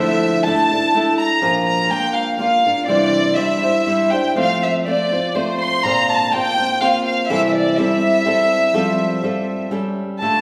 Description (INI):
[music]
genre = mexican folk, mariachi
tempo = 123 BPM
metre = 3/4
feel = straight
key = F major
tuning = A4 = 441 Hz
[part]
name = dark chamber violin section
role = melody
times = 0.0-10.4 s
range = C5 to C6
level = -20 LUFS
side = equal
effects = none
[part]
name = flamenco guitar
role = accompaniment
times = 0.0-10.4 s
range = Bb2 to C5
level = -21 LUFS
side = equal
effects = none
[sound]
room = wet recital hall reverb, RT60 1.5 s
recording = recorded in a church or concert hall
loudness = -18 LUFS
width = mono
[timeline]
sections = 0.0-10.2 A section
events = none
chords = 0.0 Dmadd9; 1.4 Bb; 2.9 Cadd9; 4.4 F; 5.8 Bbadd9; 7.3 C6; 8.7 Fadd9; 9.7 A7